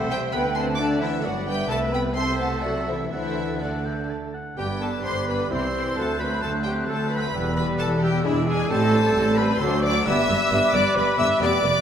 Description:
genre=quick classical-period movement for symphony orchestra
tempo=131 BPM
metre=3/4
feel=rubato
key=G major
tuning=A4 = 438 Hz
part: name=bright large flute ensemble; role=second line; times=0.0-11.8 s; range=A4 to F#6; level=-32 LUFS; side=equal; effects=none
part: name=warm chamber violin section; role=second line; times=0.0-11.8 s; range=D4 to E5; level=-32 LUFS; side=left 4 dB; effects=none
part: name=warm oboe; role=second line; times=0.0-11.8 s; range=A4 to A5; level=-32 LUFS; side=right 1 dB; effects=none
part: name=clear bassoon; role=accompaniment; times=0.0-11.8 s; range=F#3 to C4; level=-32 LUFS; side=equal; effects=none
part: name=clear chamber viola section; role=accompaniment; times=0.0-11.7 s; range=D3 to C5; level=-32 LUFS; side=right 2 dB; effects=none
part: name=mellow French horn section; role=sustained chords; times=0.0-11.6 s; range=D3 to G#4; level=-30 LUFS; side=left 4 dB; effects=none
part: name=clear chamber double bass section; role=bass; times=0.0-11.7 s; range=E1 to D2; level=-29 LUFS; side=right 3 dB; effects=none
part: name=warm chamber cello section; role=bass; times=0.0-11.7 s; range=C2 to D3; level=-29 LUFS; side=equal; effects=none
part: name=rich chamber violin section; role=melody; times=0.1-11.8 s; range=D5 to E6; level=-30 LUFS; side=left 2 dB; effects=none
part: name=dark trumpet section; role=stabs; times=4.6-11.8 s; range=E4 to E5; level=-26 LUFS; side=right 1 dB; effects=none
room=wet scoring stage reverb, RT60 1.9 s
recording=none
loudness=-20 LUFS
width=side -8 dB against mid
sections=0.0-4.6 A section; 4.6-11.8 B section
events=none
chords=0.3 D; 1.2 G; 1.7 Am/C; 3.1 D; 4.6 G; 5.5 C; 6.0 D7; 7.3 Em; 8.3 E7; 8.7 Am7; 9.6 D7; 10.1 G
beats=| 0.34 0.79 1.24 | 1.70 2.16 2.64 | 3.12 3.61 4.09 | 4.58 5.05 5.51 | 5.98 6.44 6.89 | 7.35 7.80 8.26 | 8.71 9.16 9.61 | 10.07 10.52 10.98 | 11.42

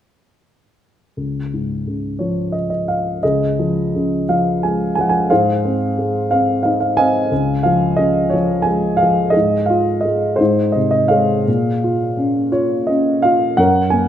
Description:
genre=classical, lyrical solo piano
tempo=58 BPM (dotted quarters)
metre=6/8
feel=rubato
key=Db major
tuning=A4 = 442 Hz
part: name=dark baby grand piano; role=solo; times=1.2-14.1 s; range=Db2 to Ab5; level=-14 LUFS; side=equal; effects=none
room=light reverb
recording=minimal, uncompressed stereo recording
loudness=-14 LUFS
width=side -10 dB against mid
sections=1.2-3.2 A section; 3.2-14.1 B section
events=none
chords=1.2 Db; 5.3 Ab; 7.3 Dbadd9; 9.3 Fm7/Ab; 10.4 Ab; 11.5 Bbm7; 13.6 Gb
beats=| 1.16 2.19 | 3.22 4.28 | 5.30 6.31 | 7.31 8.32 | 9.34 10.40 | 11.48 12.54 | 13.58

